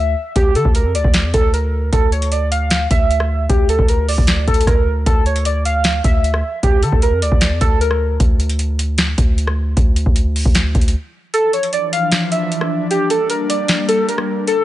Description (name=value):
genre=hip hop, trap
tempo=153 BPM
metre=4/4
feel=half-time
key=D harmonic minor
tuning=A4 = 441 Hz
part: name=warbly lo-fi synth keys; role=melody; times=0.0-8.2, 11.3-14.6 s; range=G4 to F5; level=-18 LUFS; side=right 1 dB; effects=chorus
part: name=hard-hitting 808-style bass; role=bass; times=0.0-10.9 s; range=D2 to D3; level=-17 LUFS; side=equal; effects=none
part: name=booming analog drum machine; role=drums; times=0.4-14.6 s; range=hi-hat, kick drum, rim click, snare drum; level=-16 LUFS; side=equal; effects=none
part: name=airy breathy pad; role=sustained chords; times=11.6-14.6 s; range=D3 to D4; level=-21 LUFS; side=left 2 dB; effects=chorus
room=little or no reverb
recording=nothing above 10.8 kHz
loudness=-14 LUFS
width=side -14 dB against mid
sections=0.0-14.6 A section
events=break 10.9-11.3; kick muted 11.3-14.6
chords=0.4 Bb/D; 1.9 Dsus2; 6.6 Bb/D; 8.2 N.C.; 11.3 Dmadd9; 12.9 Bb6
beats=| 0.36 0.75 1.14 1.53 | 1.93 2.32 2.71 3.10 | 3.50 3.89 4.28 4.67 | 5.06 5.46 5.85 6.24 | 6.63 7.02 7.42 7.81 | 8.20 8.59 8.98 9.38 | 9.77 10.16 10.55 10.95 | 11.34 11.73 12.12 12.51 | 12.91 13.30 13.69 14.08 | 14.47